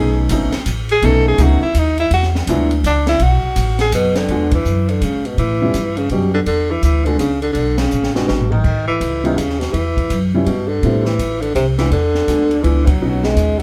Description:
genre	jazz, small-group swing and bop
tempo	165 BPM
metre	3/4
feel	swing 64% on 8ths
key	E major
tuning	A4 = 443 Hz
part	warm tenor saxophone	melody	0.0-13.6 s	B2 to A4	-20 LUFS	equal	plate reverb
part	warm baby grand piano	accompaniment	0.0-13.6 s	F#3 to G4	-22 LUFS	equal	none
part	upright bass	bass	0.0-13.6 s	F#1 to A2	-20 LUFS	equal	none
part	open jazz drum kit	drums	0.3-13.6 s	crash cymbal, hi-hat, kick drum, ride cymbal, snare drum, toms	-26 LUFS	equal	none
room	wet small room reverb, RT60 0.6 s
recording	heard from further back in the room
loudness	-16 LUFS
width	mono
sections	0.0-4.3 A section; 4.3-13.6 B section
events	tenor saxophone solo 0.0-4.3; band accent 4.5, 7.7, 12.8; drum fill 7.9-8.6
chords	0.0 B7; 2.1 E7; 3.2 B5; 4.3 E7; 5.4 A7; 6.5 E7; 8.6 A7; 10.8 Am7; 11.9 E7; 13.0 B

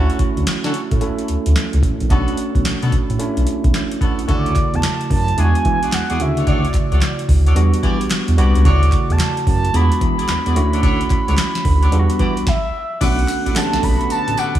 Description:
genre	R&B, new jack swing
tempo	110 BPM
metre	4/4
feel	swing 64% on 16ths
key	unclear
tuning	A4 = 442 Hz
part	tine electric piano	accompaniment	0.0-14.6 s	C#3 to A4	-22 LUFS	equal	medium stereo tremolo, slapback echo
part	warm horn section	stabs	0.0-14.6 s	B3 to D5	-28 LUFS	equal	slapback echo
part	smooth synth bass	bass	0.0-14.6 s	A1 to E3	-17 LUFS	equal	none
part	booming analog drum machine	drums	0.1-14.6 s	crash cymbal, handclaps, hi-hat, kick drum, snare drum, tambourine	-19 LUFS	equal	overdrive
part	mellow horn-like synth lead	melody	4.3-14.6 s	D5 to B5	-22 LUFS	right 1 dB	chorus, slapback echo
part	group handclap	percussion	4.6-13.7 s	none	-36 LUFS	right 4 dB	none
part	chorused pulse-width pad	sustained chords	13.0-14.6 s	D3 to F#4	-27 LUFS	right 2 dB	none
room	light reverb, digital ambience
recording	small room ambience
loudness	-14 LUFS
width	side -12 dB against mid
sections	0.0-4.3 A section; 4.3-13.0 B section; 13.0-14.6 C section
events	stop 12.5-13.0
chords	0.0 Dmaj7; 2.1 Bm7; 4.3 Dmaj7; 5.4 E9; 6.2 Dmaj7; 7.6 Em9; 8.6 Dmaj7; 9.7 E9; 10.6 Dmaj7; 11.9 Em9; 12.5 N.C.; 13.0 Bm7

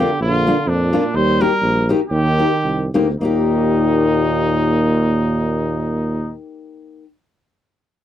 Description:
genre	alpine folk, alpine dance band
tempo	100-129 BPM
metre	2/4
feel	swing 54% on 8ths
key	Eb major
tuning	A4 = 439 Hz
part	clear trumpet	melody	0.0-6.3 s	D4 to C5	-21 LUFS	left 1 dB	none
part	warm euphonium	second line	0.0-6.3 s	Bb2 to G3	-22 LUFS	right 5 dB	none
part	fingerpicked steel-string acoustic guitar	accompaniment	0.0-7.1 s	Bb3 to G4	-20 LUFS	left 5 dB	none
part	mellow tuba	bass	0.0-6.3 s	Bb1 to F2	-19 LUFS	equal	none
room	little or no reverb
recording	dry, close 1970s-style studio recording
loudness	-15 LUFS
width	side -11 dB against mid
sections	0.0-3.2 A section; 3.2-5.6 B section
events	slowing down 1.1-3.2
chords	0.0 Bb; 1.1 Eb

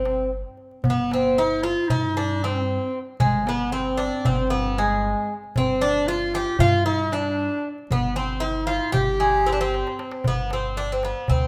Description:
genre	Turkish makam ensemble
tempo	230 BPM (eighths)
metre	9/8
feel	straight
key	G makam hicaz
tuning	A4 = 437 Hz
part	Greek bouzouki	melody	0.0-11.5 s	Ab3 to G4	-26 LUFS	equal	none
part	clear clarinet	second line	0.0-10.0 s	Ab3 to G4	-29 LUFS	equal	none
part	upright bass	bass	0.0-11.5 s	G1 to G2	-31 LUFS	equal	none
part	darbuka	percussion	0.1-11.5 s	none	-29 LUFS	equal	none
room	moderate concert hall reverb, RT60 1.8 s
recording	none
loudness	-23 LUFS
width	mono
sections	0.0-10.3 A section; 10.3-11.5 B section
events	drum fill 9.7-10.3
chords	none

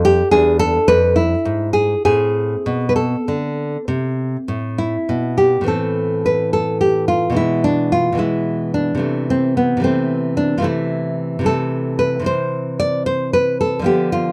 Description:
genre	classical, baroque-style dance for nylon-string guitar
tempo	64-76 BPM (dotted quarters)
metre	12/8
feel	rubato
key	A minor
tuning	A4 = 440 Hz
part	nylon-string guitar	solo	0.0-14.3 s	E2 to D5	-18 LUFS	equal	none
room	little or no reverb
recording	dry, close 1970s-style studio recording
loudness	-18 LUFS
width	mono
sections	0.0-5.7 A section; 5.7-14.3 B section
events	none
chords	0.3 E7; 2.1 Am; 7.4 E/B; 9.0 Am/C; 12.3 C

